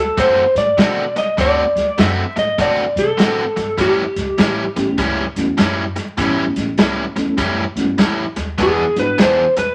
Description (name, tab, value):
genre	electric blues shuffle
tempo	100 BPM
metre	4/4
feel	swing 64% on 8ths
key	A mixolydian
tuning	A4 = 440 Hz
part	electric slide guitar	melody	0.0-5.0, 8.6-9.7 s	G4 to E5	-19 LUFS	equal	none
part	upright bass	bass	0.0-9.7 s	E1 to C3	-30 LUFS	equal	none
part	overdriven semi-hollow guitar	riff	0.2-9.6 s	A2 to G#4	-23 LUFS	equal	none
part	vintage drum kit	drums	0.2-9.7 s	hi-hat, kick drum, snare drum	-21 LUFS	equal	none
part	reed electric piano	accompaniment	4.8-9.2 s	G#3 to A4	-23 LUFS	equal	overdrive, fast tremolo
room	wet studio reverb, RT60 0.6 s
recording	vinyl crackle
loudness	-17 LUFS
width	mono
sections	0.0-9.7 A section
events	none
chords	0.0 D7; 3.8 A7; 8.6 E7